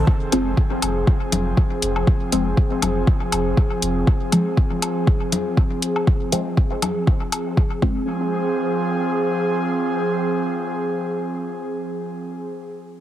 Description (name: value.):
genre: dub techno.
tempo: 120 BPM.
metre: 4/4.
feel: swing 55% on 16ths.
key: F minor.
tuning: A4 = 441 Hz.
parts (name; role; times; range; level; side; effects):
airy breathy pad; sustained chords; 0.0-12.5 s; F3 to Ab4; -23 LUFS; equal; chorus, sidechain pumping.
pure sine sub bass; bass; 0.0-4.0 s; F1; -24 LUFS; equal; sidechain pumping.
electronic kick drum; drums; 0.1-7.9 s; none; -18 LUFS; equal; overdrive.
filtered dub chord stab; stabs; 0.3-12.5 s; F3 to C4; -24 LUFS; left 1 dB; phaser, sidechain pumping, dub echo.
electronic hi-hat; drums; 0.3-7.4 s; none; -24 LUFS; left 2 dB; overdrive.
woodblock and congas; percussion; 0.3-7.4 s; none; -29 LUFS; left 4 dB; overdrive, sidechain pumping on perc, dub echo.
room: little or no reverb.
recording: heavily compressed radio sound, multiband compression.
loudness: -18 LUFS.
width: side -12 dB against mid.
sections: 0.1-8.1 A section; 8.1-12.1 B section.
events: filter sweep on analog synth pad 0.1-8.1.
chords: 0.1 Fm.